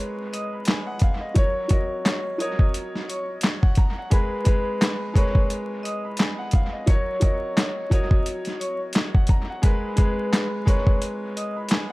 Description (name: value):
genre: hip hop, boom-bap hip-hop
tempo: 87 BPM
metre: 4/4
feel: swing 58% on 16ths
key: G# minor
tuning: A4 = 440 Hz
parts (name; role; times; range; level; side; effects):
- bright upright piano; accompaniment; 0.0-11.9 s; F#3 to B5; -29 LUFS; equal; cassette tape, high-pass filter, low-pass filter
- vibraphone with medium hard mallets; melody; 0.3-11.5 s; B4 to D#6; -31 LUFS; left 1 dB; high-pass filter, low-pass filter, dub echo
- dusty soul sampler-style drum kit; drums; 0.3-11.9 s; handclaps, hi-hat, kick drum, snare drum; -20 LUFS; equal; overdrive
room: small room ambience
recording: echo-heavy mix, vinyl crackle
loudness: -20 LUFS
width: side -21 dB against mid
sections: 0.0-11.9 A section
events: none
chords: 0.0 G#madd9; 1.4 F#; 4.1 G#madd9; 6.9 F#; 9.6 G#madd9